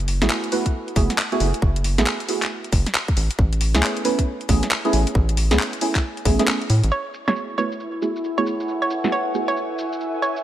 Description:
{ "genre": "UK garage, two-step garage", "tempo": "136 BPM", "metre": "4/4", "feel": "swing 63% on 16ths", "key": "F# minor", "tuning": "A4 = 440 Hz", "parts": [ { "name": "rubbery square bass", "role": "bass", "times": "0.0-6.9 s", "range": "F#1 to A2", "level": "-20 LUFS", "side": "equal", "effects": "none" }, { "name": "garage drum kit", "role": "drums", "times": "0.0-10.4 s", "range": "handclaps, hi-hat, shaker, snare drum", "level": "-24 LUFS", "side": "left 1 dB", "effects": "low-pass filter on hats, low-pass filter on snare, low-pass filter on perc" }, { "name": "deep mellow chord stab", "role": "stabs", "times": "0.2-9.5 s", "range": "A3 to B4", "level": "-24 LUFS", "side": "right 2 dB", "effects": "chorus, tape echo" }, { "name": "electronic kick drum", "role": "drums", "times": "0.7-6.4 s", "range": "none", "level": "-20 LUFS", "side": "equal", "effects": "none" }, { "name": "hollow square pluck", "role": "melody", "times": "6.9-10.4 s", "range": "C#5", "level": "-25 LUFS", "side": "right 3 dB", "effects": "chorus, tape echo" }, { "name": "soft string machine", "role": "sustained chords", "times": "7.8-10.4 s", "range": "E4 to E5", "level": "-32 LUFS", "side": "left 1 dB", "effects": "ensemble chorus, sidechain pumping" }, { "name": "warbly tape-like pad", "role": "texture", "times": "7.5-10.4 s", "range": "E4 to G#5", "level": "-26 LUFS", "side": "equal", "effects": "chorus, built-in reverb, phaser, sidechain pumping" } ], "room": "light reverb, digital ambience", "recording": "none", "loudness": "-19 LUFS", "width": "side -12 dB against mid", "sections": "0.0-6.9 A section; 6.9-10.4 B section", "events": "kick drops out 6.5-6.9; filter sweep on synth stab 6.9-10.4", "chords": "0.0 F#m11; 3.2 Amaj9; 6.9 F#m11", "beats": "0.30 0.74 1.18 | 1.62 2.06 2.50 2.95 | 3.39 3.83 4.27 4.71 | 5.15 5.59 6.04 6.48 | 6.92 7.36 7.80 8.24 | 8.68 9.12 9.56 10.01" }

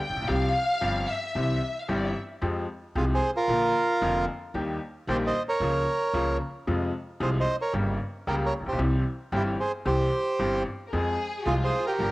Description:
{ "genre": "tango", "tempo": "113 BPM", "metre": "4/4", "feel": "rubato", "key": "F minor", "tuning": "A4 = 440 Hz", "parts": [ { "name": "rich studio violin section", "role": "second line", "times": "0.0-2.2, 10.9-12.1 s", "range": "F4 to G5", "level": "-29 LUFS", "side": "left 2 dB", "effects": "none" }, { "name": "bright upright piano", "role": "accompaniment", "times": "0.1-12.1 s", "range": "F1 to Ab4", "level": "-30 LUFS", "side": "left 2 dB", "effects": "none" }, { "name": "upright bass", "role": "bass", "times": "0.1-12.1 s", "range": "F1 to F2", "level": "-30 LUFS", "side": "right 1 dB", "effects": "none" }, { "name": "bandoneon", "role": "melody", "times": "3.0-12.1 s", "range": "E4 to Eb5", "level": "-26 LUFS", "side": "right 2 dB", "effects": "cassette tape" } ], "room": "moderate spring reverb, RT60 1.7 s", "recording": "home recording on cassette", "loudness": "-24 LUFS", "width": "side -19 dB against mid", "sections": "0.0-2.4 A section; 2.4-12.1 B section", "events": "violin section solo 0.0-2.4", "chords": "0.3 Csus4; 1.4 C; 2.4 Fmadd9; 3.5 Bb; 4.6 Eb; 5.6 Bbm/Db; 6.7 Fm; 7.7 Gdim; 8.8 C; 10.9 Fm", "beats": "| 0.29 0.82 1.35 1.89 | 2.42 2.96 3.49 4.02 | 4.55 5.08 5.61 6.14 | 6.68 7.21 7.74 8.27 | 8.80 9.33 9.86 10.40 | 10.94 11.47 12.00" }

